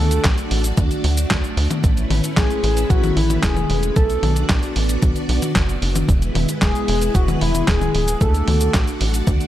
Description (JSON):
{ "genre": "italo disco", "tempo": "113 BPM", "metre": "4/4", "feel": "straight", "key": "unclear", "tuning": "A4 = 440 Hz", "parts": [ { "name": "soft octave-layered synth lead", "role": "melody", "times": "0.0-8.7 s", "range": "E4 to A4", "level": "-24 LUFS", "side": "left 2 dB", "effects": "chorus, tape echo" }, { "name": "string machine, full ensemble", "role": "sustained chords", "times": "0.0-9.5 s", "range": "G#3 to D5", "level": "-25 LUFS", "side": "right 1 dB", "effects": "ensemble chorus" }, { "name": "tight sequencer bass", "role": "bass", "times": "0.0-9.4 s", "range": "D1 to D2", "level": "-20 LUFS", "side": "equal", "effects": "none" }, { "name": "clean 12-bit digital drum machine", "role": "drums", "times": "0.1-9.5 s", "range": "cabasa, handclaps, hi-hat, snare drum, toms", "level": "-23 LUFS", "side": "left 1 dB", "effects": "none" }, { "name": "electronic kick drum", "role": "drums", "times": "0.2-9.4 s", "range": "none", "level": "-19 LUFS", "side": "equal", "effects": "none" } ], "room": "digital ambience", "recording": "dark, warm production", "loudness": "-16 LUFS", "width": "side -13 dB against mid", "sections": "0.0-9.5 A section", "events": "none", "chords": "0.0 D; 1.8 Aadd9; 4.0 Bm; 6.1 E; 8.2 D", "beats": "0.24 0.78 1.31 | 1.84 2.37 2.90 3.43 | 3.96 4.49 5.02 5.55 | 6.09 6.62 7.15 7.68 | 8.21 8.74 9.27" }